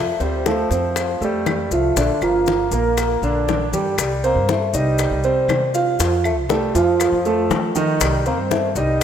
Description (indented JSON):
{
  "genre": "latin, Cuban son and guajira",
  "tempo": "119 BPM",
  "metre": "4/4",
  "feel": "straight",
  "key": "unclear",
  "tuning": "A4 = 440 Hz",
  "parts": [
    { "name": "warm bassoon", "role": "melody", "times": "0.0-9.0 s", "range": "F3 to Bb3", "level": "-24 LUFS", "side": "left 3 dB", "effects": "none" },
    { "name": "warm concert grand piano", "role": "arpeggios", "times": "0.0-9.0 s", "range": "D3 to F5", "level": "-19 LUFS", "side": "right 3 dB", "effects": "none" },
    { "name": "upright bass", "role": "bass", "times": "0.0-9.0 s", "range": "G1 to F3", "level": "-24 LUFS", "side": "left 1 dB", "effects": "none" },
    { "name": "bongos", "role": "percussion", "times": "0.2-9.0 s", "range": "none", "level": "-27 LUFS", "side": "left 9 dB", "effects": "none" },
    { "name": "congas", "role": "percussion", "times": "0.2-9.0 s", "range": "none", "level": "-32 LUFS", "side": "left 6 dB", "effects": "none" },
    { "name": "maracas", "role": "percussion", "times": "0.2-9.0 s", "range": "none", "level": "-31 LUFS", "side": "left 8 dB", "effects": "none" },
    { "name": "claves", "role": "percussion", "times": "1.0-8.3 s", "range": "none", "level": "-34 LUFS", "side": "equal", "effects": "none" }
  ],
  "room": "moderate lush hall reverb, RT60 2.9 s",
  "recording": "rough home demo mix",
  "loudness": "-16 LUFS",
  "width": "side -8 dB against mid",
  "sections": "0.0-4.0 A section; 4.0-9.0 B section",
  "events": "none",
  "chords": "0.0 F; 2.0 Bb; 4.0 Cm; 6.0 F; 8.0 Cm"
}